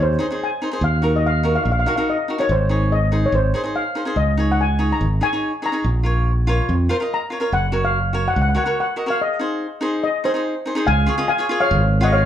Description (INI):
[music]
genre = calypso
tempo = 143 BPM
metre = 4/4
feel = straight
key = Db major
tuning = A4 = 441 Hz
[part]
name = steel pan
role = melody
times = 0.0-12.3 s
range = C5 to Bb5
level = -21 LUFS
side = left 2 dB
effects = none
[part]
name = cavaquinho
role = accompaniment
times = 0.0-12.2 s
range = Eb4 to Eb5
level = -23 LUFS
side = equal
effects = none
[part]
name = modern bright fingered electric bass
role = bass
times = 0.0-12.3 s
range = Gb1 to F2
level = -19 LUFS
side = right 1 dB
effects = none
[sound]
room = moderate large studio reverb, RT60 0.8 s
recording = band playing live in one room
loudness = -17 LUFS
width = side -10 dB against mid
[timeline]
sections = 0.0-10.9 A section; 10.9-12.3 B section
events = break 9.2-10.9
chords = 0.0 Ab; 0.8 Ebm; 2.5 Absus4; 3.3 Ab; 4.2 Dbsus2; 5.8 Bbm; 7.5 Gb; 9.2 Ab; 10.9 Db